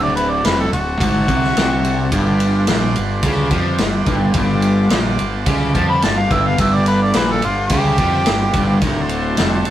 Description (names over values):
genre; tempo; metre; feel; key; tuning
blues rock power trio and southern rock; 108 BPM; 4/4; straight; unclear; A4 = 443 Hz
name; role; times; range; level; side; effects
clear harmonica; melody; 0.0-2.1, 5.8-8.8 s; F4 to B5; -19 LUFS; equal; overdrive
overdriven tonewheel organ; sustained chords; 0.0-9.7 s; C4 to D5; -25 LUFS; right 2 dB; slow rotary speaker
overdriven semi-hollow guitar; riff; 0.0-9.7 s; D2 to F3; -19 LUFS; equal; none
fuzz fingered electric bass; bass; 0.0-9.7 s; D1 to F2; -22 LUFS; equal; overdrive
vintage drum kit; drums; 0.2-9.7 s; kick drum, ride cymbal, snare drum; -19 LUFS; equal; none
room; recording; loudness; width
moderate studio reverb, RT60 0.5 s; rough rehearsal-room recording, tube saturation; -14 LUFS; side -12 dB against mid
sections
0.0-9.7 A section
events
harmonica solo 0.0-9.7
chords
0.0 D7; 2.1 G7; 8.8 D7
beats
0.44 1.00 1.56 | 2.12 2.68 3.24 3.80 | 4.36 4.91 5.47 6.03 | 6.59 7.15 7.70 8.26 | 8.82 9.38